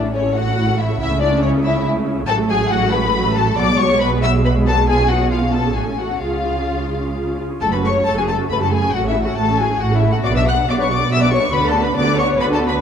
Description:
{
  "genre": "quick classical-period movement for string orchestra",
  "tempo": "138 BPM",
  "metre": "3/4",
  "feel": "rubato",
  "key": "F# minor",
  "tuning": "A4 = 440 Hz",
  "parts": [
    { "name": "muted symphonic violin section", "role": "second line", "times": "0.0-12.8 s", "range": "C#4 to F#5", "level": "-22 LUFS", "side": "left 3 dB", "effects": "none" },
    { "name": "muted symphonic viola section", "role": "accompaniment", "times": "0.0-12.8 s", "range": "F#3 to B4", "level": "-22 LUFS", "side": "right 1 dB", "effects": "none" },
    { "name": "muted symphonic cello section", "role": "bass", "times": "0.0-12.8 s", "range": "F#2 to D3", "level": "-23 LUFS", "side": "right 2 dB", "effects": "none" },
    { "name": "muted symphonic double bass section", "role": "bass", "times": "0.0-12.8 s", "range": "F#1 to D2", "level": "-22 LUFS", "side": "right 2 dB", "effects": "none" },
    { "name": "muted symphonic violin section", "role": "melody", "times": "0.1-12.7 s", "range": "C#5 to F#6", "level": "-21 LUFS", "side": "left 5 dB", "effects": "none" }
  ],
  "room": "moderate concert hall reverb, RT60 1.9 s",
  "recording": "dark, warm production",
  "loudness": "-15 LUFS",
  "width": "side -8 dB against mid",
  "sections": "0.0-7.6 A section; 7.6-12.8 B section",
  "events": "none",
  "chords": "0.0 A; 1.0 A/C#; 2.3 F#m/A; 3.6 Bm13; 4.9 C#7/B; 5.8 F#m/A; 6.2 C#; 7.6 F#m; 8.9 F#m/A; 10.2 Bm; 11.5 Bm/D"
}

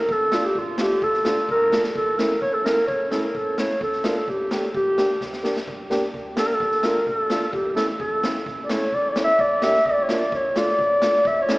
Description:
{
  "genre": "klezmer",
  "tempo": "129 BPM",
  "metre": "2/4",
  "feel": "straight",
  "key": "G dorian sharp4",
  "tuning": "A4 = 437 Hz",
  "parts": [
    { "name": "dark clarinet", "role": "melody", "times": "0.0-11.6 s", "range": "F4 to E5", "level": "-20 LUFS", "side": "equal", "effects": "none" },
    { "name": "upright bass", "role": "bass", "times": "0.1-11.5 s", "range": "F1 to E2", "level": "-46 LUFS", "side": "equal", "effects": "none" },
    { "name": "street-band drum kit", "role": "drums", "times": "0.1-11.6 s", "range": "kick drum, snare drum", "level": "-30 LUFS", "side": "equal", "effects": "none" },
    { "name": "dark upright piano", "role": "accompaniment", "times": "0.3-11.6 s", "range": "A3 to G4", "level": "-27 LUFS", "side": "equal", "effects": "none" }
  ],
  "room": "wet cathedral reverb, RT60 4.5 s",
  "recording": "recorded in a church or concert hall, small speaker sound",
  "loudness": "-19 LUFS",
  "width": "side -22 dB against mid",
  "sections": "0.0-5.7 A section; 5.7-11.6 B section",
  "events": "drum fill 5.2-5.7; clarinet solo 5.7-11.6",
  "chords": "0.1 Dm; 1.9 A; 3.8 Dm; 4.7 Gm; 6.6 Dm; 7.5 A; 9.4 Gm; 10.3 Dm"
}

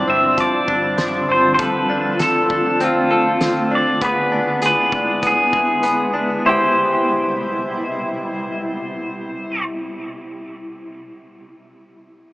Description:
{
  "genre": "dream pop",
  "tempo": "99 BPM",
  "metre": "4/4",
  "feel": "straight",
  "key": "C major",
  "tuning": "A4 = 440 Hz",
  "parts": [
    { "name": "pedal steel guitar", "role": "melody", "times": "0.0-9.6 s", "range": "F4 to E5", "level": "-19 LUFS", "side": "equal", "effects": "digital delay" },
    { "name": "granular cloud pad", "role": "sustained chords", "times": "0.0-9.6 s", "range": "B2 to F4", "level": "-25 LUFS", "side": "equal", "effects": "built-in reverb" },
    { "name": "direct-recorded clean electric guitar", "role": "arpeggios", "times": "0.0-10.4 s", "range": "F3 to A4", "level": "-20 LUFS", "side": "left 1 dB", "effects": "lush chorus, digital delay" },
    { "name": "vintage muted fingered electric bass", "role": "bass", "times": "0.0-1.6 s", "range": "G1", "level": "-36 LUFS", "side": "equal", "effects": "none" },
    { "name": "loose indie drum kit", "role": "drums", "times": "0.4-6.0 s", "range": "hi-hat, kick drum, snare drum", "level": "-28 LUFS", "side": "equal", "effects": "none" }
  ],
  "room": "moderate huge ambient reverb, RT60 6.1 s",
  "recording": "small speaker sound",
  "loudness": "-16 LUFS",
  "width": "side -19 dB against mid",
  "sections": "0.0-6.4 A section; 6.4-8.9 B section",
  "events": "none",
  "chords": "0.0 G7sus4; 1.6 Dm7; 4.0 E7; 6.4 Cmaj7"
}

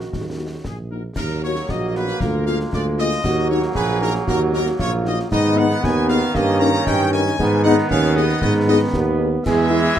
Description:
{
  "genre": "military-style march for wind band",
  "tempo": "116 BPM",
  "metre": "2/4",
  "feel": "straight",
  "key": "Eb minor",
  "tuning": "A4 = 440 Hz",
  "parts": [
    { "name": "clear trumpet section", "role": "melody", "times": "0.0-10.0 s", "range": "Gb4 to Bb5", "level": "-26 LUFS", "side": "left 2 dB", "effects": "none" },
    { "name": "clear euphonium", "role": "second line", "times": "0.0-10.0 s", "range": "Bb3 to Ab4", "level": "-23 LUFS", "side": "right 2 dB", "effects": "none" },
    { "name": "bright trombone section", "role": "sustained chords", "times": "0.0-10.0 s", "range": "Eb3 to Db4", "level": "-25 LUFS", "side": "right 1 dB", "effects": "none" },
    { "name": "mellow tuba", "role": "bass", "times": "0.0-9.9 s", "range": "Bb1 to Ab2", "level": "-20 LUFS", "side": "right 2 dB", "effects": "none" },
    { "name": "concert snare drum, concert bass drum and clash cymbals", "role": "drums", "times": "0.0-10.0 s", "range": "none", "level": "-29 LUFS", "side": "left 1 dB", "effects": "none" },
    { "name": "dark French horn section", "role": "accompaniment", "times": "0.4-9.8 s", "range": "Bb3 to Bb4", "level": "-22 LUFS", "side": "left 6 dB", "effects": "none" }
  ],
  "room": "light reverb",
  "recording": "dark, warm production",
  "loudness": "-16 LUFS",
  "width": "side -10 dB against mid",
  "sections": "0.0-1.2 A section; 1.2-10.0 A section",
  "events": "none",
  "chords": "0.0 Ebm; 2.2 Bb7/D; 3.2 Ebm; 5.3 Abm; 6.3 Eb7/G; 7.4 Abm; 9.5 E"
}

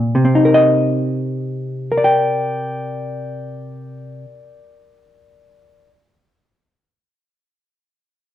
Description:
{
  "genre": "solo jazz",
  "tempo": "56 BPM",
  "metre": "4/4",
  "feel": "swing 68% on 8ths",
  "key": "C minor",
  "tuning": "A4 = 440 Hz",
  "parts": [
    { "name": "hollow-body jazz guitar", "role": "solo", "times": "0.0-5.9 s", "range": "Bb2 to G5", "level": "-16 LUFS", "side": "left 1 dB", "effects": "none" }
  ],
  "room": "moderate stone room reverb, RT60 1.1 s",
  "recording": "band playing live in one room",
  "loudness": "-15 LUFS",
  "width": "side -12 dB against mid",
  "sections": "0.1-4.4 A section",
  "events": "none",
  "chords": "0.1 Cm9"
}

